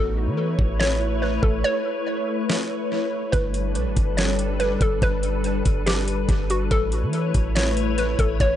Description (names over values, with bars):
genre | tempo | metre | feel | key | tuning
hip hop, atmospheric cloud-rap | 142 BPM | 4/4 | half-time | unclear | A4 = 440 Hz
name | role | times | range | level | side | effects
hollow square pluck | melody | 0.0-8.6 s | F#4 to C#5 | -27 LUFS | equal | chorus, tape echo
glassy FM pad | sustained chords | 0.0-8.6 s | G3 to C#5 | -26 LUFS | left 2 dB | ensemble chorus, built-in reverb, sidechain pumping
soft 808-style bass | bass | 0.0-8.6 s | G1 to E3 | -24 LUFS | equal | none
smooth R&B drum kit | drums | 0.6-8.5 s | hi-hat, kick drum, snare drum | -24 LUFS | equal | tape echo
room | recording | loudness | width
little or no reverb | echo-heavy mix, nothing above 10.4 kHz | -20 LUFS | side -11 dB against mid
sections
0.0-8.6 A section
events
break 0.0-3.3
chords
0.0 Aadd9; 3.3 Gadd9; 6.7 Aadd9